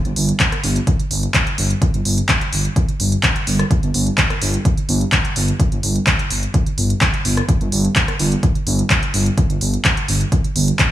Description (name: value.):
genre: progressive house.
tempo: 127 BPM.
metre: 4/4.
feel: straight.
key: unclear.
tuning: A4 = 440 Hz.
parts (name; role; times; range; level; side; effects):
dark detuned saw bass; bass; 0.1-10.7 s; G1; -18 LUFS; equal; sidechain pumping.
deep house drum kit; drums; 0.1-10.9 s; handclaps, hi-hat, rim click; -20 LUFS; equal; none.
electronic kick drum; drums; 0.4-10.9 s; none; -18 LUFS; equal; none.
room: little or no reverb.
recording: small room ambience.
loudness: -15 LUFS.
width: side -13 dB against mid.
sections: 0.0-10.9 A section.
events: none.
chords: none.